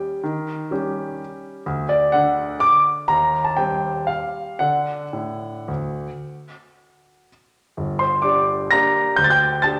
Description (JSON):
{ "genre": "classical, piano waltz", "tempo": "107-135 BPM", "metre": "3/4", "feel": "rubato", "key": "G minor", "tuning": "A4 = 440 Hz", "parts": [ { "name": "warm concert grand piano", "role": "solo", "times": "0.0-9.8 s", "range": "G1 to Bb6", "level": "-21 LUFS", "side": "equal", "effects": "none" } ], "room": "wet recital hall reverb, RT60 1.4 s", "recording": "none", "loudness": "-20 LUFS", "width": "mono", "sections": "0.0-7.8 A section; 7.8-9.8 B section", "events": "none", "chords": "0.0 Eb7; 1.7 D; 3.1 Cm/Eb; 4.6 D; 7.8 Gm" }